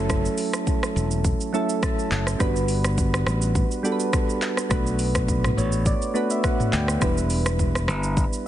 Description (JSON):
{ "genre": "afrobeats", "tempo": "104 BPM", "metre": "4/4", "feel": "swing 55% on 16ths", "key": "E dorian", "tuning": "A4 = 440 Hz", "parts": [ { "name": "soft electric-piano-like synth keys", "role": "accompaniment", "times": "0.0-8.5 s", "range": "F#3 to A5", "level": "-25 LUFS", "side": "right 1 dB", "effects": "chorus" }, { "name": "modern bright fingered electric bass", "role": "bass", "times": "0.0-8.2 s", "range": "E1 to D2", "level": "-24 LUFS", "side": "equal", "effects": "none" }, { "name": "afro-pop drum kit", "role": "drums", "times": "0.1-8.5 s", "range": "handclaps, hi-hat, kick drum, rim click, shaker, toms", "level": "-25 LUFS", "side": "equal", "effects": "none" } ], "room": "little or no reverb", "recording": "heavily compressed radio sound, multiband compression, nothing above 10.4 kHz", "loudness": "-20 LUFS", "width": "side -12 dB against mid", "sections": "0.0-8.5 A section", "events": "synth keys fill 1.2-2.4, 5.3-7.0", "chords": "0.0 F#m7; 2.4 Gmaj7; 4.7 Bm7; 7.0 Em7", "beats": "| 0.10 0.67 1.25 1.82 | 2.40 2.98 3.56 4.13 | 4.71 5.29 5.86 6.44 | 7.02 7.59 8.17" }